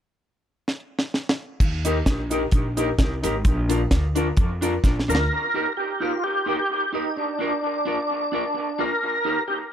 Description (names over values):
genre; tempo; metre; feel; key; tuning
ska; 130 BPM; 4/4; swing 54% on 8ths; Eb major; A4 = 441 Hz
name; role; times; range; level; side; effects
deep reggae drum kit; drums; 0.7-5.3 s; crash cymbal, hi-hat, kick drum, snare drum; -22 LUFS; equal; none
upright bass; bass; 1.6-5.3 s; Ab1 to F2; -25 LUFS; equal; none
cabasa; percussion; 1.6-5.2 s; none; -36 LUFS; right 8 dB; none
dark upright piano; stabs; 1.8-5.2 s; D4 to Bb4; -29 LUFS; left 5 dB; dub echo
electric guitar through a small old amp; accompaniment; 1.9-9.4 s; D4 to Bb4; -28 LUFS; right 1 dB; dub echo
tonewheel organ; melody; 5.1-9.6 s; D4 to Bb4; -24 LUFS; equal; overdrive, chorus vibrato, slow rotary speaker, dub echo
room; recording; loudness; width
light reverb; none; -21 LUFS; side -9 dB against mid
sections
0.0-1.6 A section; 1.6-5.3 B section; 5.3-9.7 C section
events
drum fill 0.7-1.6, 4.8-5.3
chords
0.0 N.C.; 1.6 Eb; 3.5 Bb; 5.3 Eb; 7.2 Bb; 9.0 Eb